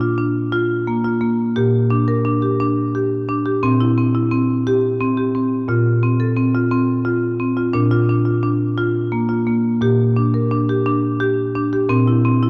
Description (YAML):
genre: world meditative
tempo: 58 BPM (dotted quarters)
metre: 6/8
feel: straight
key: Bb lydian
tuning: A4 = 441 Hz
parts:
  - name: marimba with medium hard mallets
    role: solo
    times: 0.0-12.5 s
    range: Bb2 to Bb4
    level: -18 LUFS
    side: equal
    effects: none
room: wet church reverb, RT60 3.5 s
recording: dark, warm production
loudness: -18 LUFS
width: mono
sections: 0.0-12.5 A section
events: none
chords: 0.0 Bb; 1.6 Gm/Bb; 3.6 C/Bb; 5.7 F5/Bb; 7.8 Bb; 9.8 Gm/Bb; 11.9 C/Bb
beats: 0.53 | 1.56 2.59 | 3.62 4.66 | 5.69 6.72 | 7.75 8.79 | 9.82 10.86 | 11.89